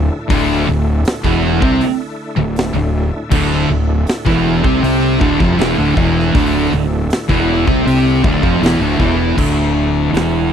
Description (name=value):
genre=stoner and doom metal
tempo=79 BPM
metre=4/4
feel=straight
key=D minor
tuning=A4 = 440 Hz
part: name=bright tonewheel organ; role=sustained chords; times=0.0-10.5 s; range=D3 to E4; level=-27 LUFS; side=equal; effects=none
part: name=scooped high-gain guitar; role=riff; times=0.0-9.4 s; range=D2 to C4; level=-22 LUFS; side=equal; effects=distortion
part: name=thick fuzz guitar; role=riff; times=0.0-10.5 s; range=D2 to C4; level=-17 LUFS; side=left 9 dB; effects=distortion
part: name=thick fuzz guitar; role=riff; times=0.0-10.5 s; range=D2 to C4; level=-18 LUFS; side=right 10 dB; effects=distortion
part: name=fuzz fingered electric bass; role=bass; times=0.0-10.5 s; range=D1 to C2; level=-19 LUFS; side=equal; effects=overdrive, tube saturation
part: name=big rock drum kit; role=drums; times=0.3-10.3 s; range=crash cymbal, hi-hat, kick drum, snare drum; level=-18 LUFS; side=equal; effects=none
room=little or no reverb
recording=dry, close 1970s-style studio recording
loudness=-12 LUFS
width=side -8 dB against mid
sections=0.0-9.4 A section; 9.4-10.5 B section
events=none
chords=0.0 Dm; 9.4 D5